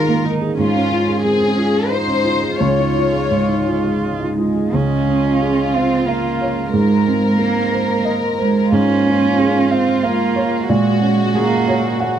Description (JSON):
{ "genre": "neoclassical piano and strings", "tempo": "80-93 BPM", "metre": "3/4", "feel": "rubato", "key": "Db major", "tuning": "A4 = 440 Hz", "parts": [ { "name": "dark studio violin section", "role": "melody", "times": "0.0-12.2 s", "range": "F4 to Db5", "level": "-21 LUFS", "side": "left 3 dB", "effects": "none" }, { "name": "dark cello", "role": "second line", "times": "0.0-12.0 s", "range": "Ab3 to F4", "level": "-19 LUFS", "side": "right 4 dB", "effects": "none" }, { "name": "felt-muted upright piano", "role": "accompaniment", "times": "0.0-12.2 s", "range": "Db2 to Gb5", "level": "-18 LUFS", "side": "right 1 dB", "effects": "none" }, { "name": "deep dark ambient pad", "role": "sustained chords", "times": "0.3-12.2 s", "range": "Ab3 to F5", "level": "-28 LUFS", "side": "left 2 dB", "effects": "chorus, built-in reverb" } ], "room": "light reverb", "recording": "close, detailed microphones", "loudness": "-14 LUFS", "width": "side -9 dB against mid", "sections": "0.0-4.7 A section; 4.7-12.2 B section", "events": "none", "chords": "0.0 Absus2; 0.6 Db/Ab; 2.6 Dbadd9; 4.7 Db; 6.7 Abadd9; 8.7 Db/Ab; 10.7 Gbadd9", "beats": "| 0.58 1.24 1.91 | 2.60 3.31 4.01 | 4.74 5.42 6.08 | 6.74 7.40 8.06 | 8.74 9.40 10.04 | 10.70 11.36 12.01" }